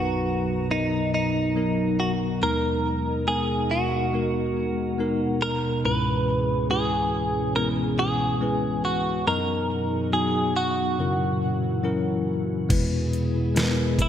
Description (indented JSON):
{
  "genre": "pop ballad",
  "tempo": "70 BPM",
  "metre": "4/4",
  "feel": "straight",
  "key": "B major",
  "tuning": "A4 = 440 Hz",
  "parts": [
    { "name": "direct-recorded clean electric guitar", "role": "melody", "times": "0.0-14.1 s", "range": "D#4 to B4", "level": "-26 LUFS", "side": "right 1 dB", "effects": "analog chorus" },
    { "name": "bell-like tine electric piano", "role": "accompaniment", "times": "0.0-14.1 s", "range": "B1 to D#5", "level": "-26 LUFS", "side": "left 2 dB", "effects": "fast stereo tremolo" },
    { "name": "glassy FM pad", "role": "sustained chords", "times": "0.0-14.1 s", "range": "F#2 to A#5", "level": "-29 LUFS", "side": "right 1 dB", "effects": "ensemble chorus, built-in reverb" },
    { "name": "smooth R&B drum kit", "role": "drums", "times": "12.7-14.1 s", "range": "crash cymbal, hi-hat, kick drum, snare drum", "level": "-25 LUFS", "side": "equal", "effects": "gated reverb" }
  ],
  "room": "moderate lush hall reverb, RT60 2.0 s",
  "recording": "bright 1980s-style digital production",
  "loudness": "-22 LUFS",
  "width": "side -9 dB against mid",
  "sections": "0.0-12.7 A section; 12.7-14.1 B section",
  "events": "none",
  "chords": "0.0 Bmaj7; 2.4 G#madd9; 5.8 C#m7; 9.3 B/F#; 11.0 F#7; 12.7 E"
}